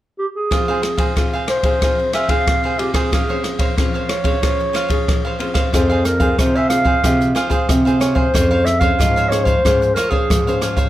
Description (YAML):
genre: samba and choro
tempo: 92 BPM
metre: 4/4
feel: straight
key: F minor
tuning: A4 = 440 Hz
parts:
  - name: dark clarinet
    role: melody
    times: 0.2-10.6 s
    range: G4 to F5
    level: -19 LUFS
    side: right 1 dB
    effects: plate reverb
  - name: cavaquinho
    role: accompaniment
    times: 0.5-10.9 s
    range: F4 to F5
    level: -24 LUFS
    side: right 3 dB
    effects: none
  - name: nylon-string guitar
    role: accompaniment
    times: 0.5-10.9 s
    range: C3 to C5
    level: -25 LUFS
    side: left 3 dB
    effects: none
  - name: open jazz drum kit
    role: drums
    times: 0.5-10.9 s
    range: hi-hat, kick drum, ride cymbal, rim click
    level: -19 LUFS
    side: equal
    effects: none
  - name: nylon-string guitar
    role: bass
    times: 5.7-10.9 s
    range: F2 to C3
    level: -18 LUFS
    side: right 1 dB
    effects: none
room: light reverb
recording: none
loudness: -14 LUFS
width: side -14 dB against mid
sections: 0.5-5.7 A section; 5.7-10.9 B section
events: none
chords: 0.0 N.C.; 0.5 Fm; 3.1 Dbmaj7/F; 5.7 Fm; 8.3 Dbmaj7/F